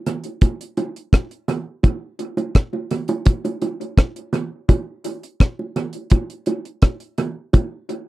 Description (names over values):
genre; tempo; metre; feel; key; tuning
reggae; 84 BPM; 4/4; straight; none; none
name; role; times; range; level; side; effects
deep reggae drum kit; drums; 0.1-8.1 s; hi-hat, kick drum, rim click; -14 LUFS; equal; none
bongos; percussion; 0.1-7.7 s; none; -24 LUFS; right 3 dB; tape echo
room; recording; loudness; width
light reverb; dry, close 1970s-style studio recording; -19 LUFS; side -18 dB against mid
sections
0.0-8.1 A section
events
none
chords
none